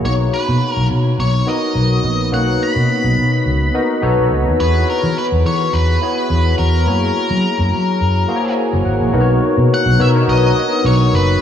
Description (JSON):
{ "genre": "polished 1980s jazz-funk pop", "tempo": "106 BPM", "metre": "4/4", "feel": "swing 54% on 16ths", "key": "B major", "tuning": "A4 = 440 Hz", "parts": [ { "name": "barky tine electric piano", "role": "accompaniment", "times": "0.0-11.4 s", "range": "A#3 to A#5", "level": "-17 LUFS", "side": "left 1 dB", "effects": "analog chorus" }, { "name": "vintage muted fingered electric bass", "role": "bass", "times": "0.0-11.4 s", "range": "F#1 to F#3", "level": "-15 LUFS", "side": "equal", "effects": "none" }, { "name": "octave-fuzz lead guitar", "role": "melody", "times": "0.1-11.4 s", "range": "A#4 to B5", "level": "-21 LUFS", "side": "left 1 dB", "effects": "distortion" } ], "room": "wet cathedral reverb, RT60 6.3 s", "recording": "dreamy mix soaked in reverb, small room ambience", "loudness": "-13 LUFS", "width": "side -9 dB against mid", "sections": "0.0-9.1 A section; 9.1-11.4 B section", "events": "tine electric piano fill 8.3-9.1", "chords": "0.0 Bmaj9; 4.0 B7; 4.6 E69; 6.9 F#7; 9.1 Bmaj9", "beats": "| 0.04 0.61 1.18 1.75 | 2.32 2.89 3.46 4.02 | 4.59 5.16 5.73 6.30 | 6.87 7.44 8.01 8.57 | 9.14 9.71 10.28 10.84 | 11.41" }